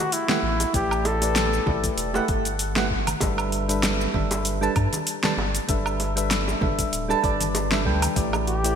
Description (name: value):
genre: sunset chillout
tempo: 97 BPM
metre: 4/4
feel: swing 55% on 16ths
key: G major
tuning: A4 = 442 Hz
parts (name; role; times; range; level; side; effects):
- mellow flugelhorn; melody; 0.0-2.0, 8.5-8.8 s; E4 to A4; -27 LUFS; left 1 dB; digital delay
- deep house drum kit; drums; 0.1-8.8 s; hi-hat, shaker, snare drum, woodblock; -27 LUFS; equal; small room reverb, gated reverb
- soft electric-piano-like synth keys; accompaniment; 0.3-8.8 s; G3 to A5; -26 LUFS; right 1 dB; chorus, auto-pan, ping-pong delay
- congas and bongos; percussion; 0.3-8.4 s; none; -34 LUFS; right 1 dB; none
- warm sub bass; bass; 0.4-8.8 s; D1 to G2; -28 LUFS; equal; none
- electronic kick drum; drums; 0.7-8.3 s; none; -28 LUFS; equal; small room reverb
room: moderate lush hall reverb, RT60 2.2 s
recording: bright 1980s-style digital production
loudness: -21 LUFS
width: side -7 dB against mid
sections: 0.0-8.8 A section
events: none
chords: 0.0 A7sus4; 3.2 G6; 8.2 A7sus4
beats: 0.12 | 0.74 1.36 1.98 2.60 | 3.21 3.83 4.45 5.07 | 5.69 6.31 6.93 7.54 | 8.16